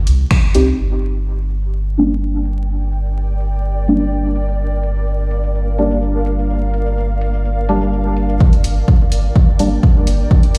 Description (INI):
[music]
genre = dub techno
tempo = 126 BPM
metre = 4/4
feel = straight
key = G minor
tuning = A4 = 441 Hz
[part]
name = deep mellow chord stab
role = stabs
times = 0.0-10.6 s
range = G3 to G4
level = -21 LUFS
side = equal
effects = chorus, phaser, sidechain pumping, dub echo
[part]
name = soft dub sub bass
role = bass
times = 0.1-10.6 s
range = G1 to C2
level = -20 LUFS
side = equal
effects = sidechain pumping
[part]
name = punchy analog drum machine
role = drums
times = 0.1-10.6 s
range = finger snaps, hi-hat, shaker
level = -30 LUFS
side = equal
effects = low-pass filter on hats, low-pass filter on snare, low-pass filter on perc, low-pass filter on room, dub echo
[part]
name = electronic kick drum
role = drums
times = 0.3-0.4, 8.4-10.4 s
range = none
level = -14 LUFS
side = equal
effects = none
[part]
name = granular cloud pad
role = sustained chords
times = 2.6-10.6 s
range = Bb4 to G5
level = -29 LUFS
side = equal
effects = built-in reverb, sidechain pumping
[sound]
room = light reverb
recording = played on a big sound system in a bare room, stone room reverb, vinyl crackle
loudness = -16 LUFS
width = mono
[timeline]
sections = 0.8-8.4 A section; 8.4-10.6 B section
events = band accent 0.3; filter sweep on synth stab 0.8-8.4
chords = 0.0 Cm; 0.8 Gm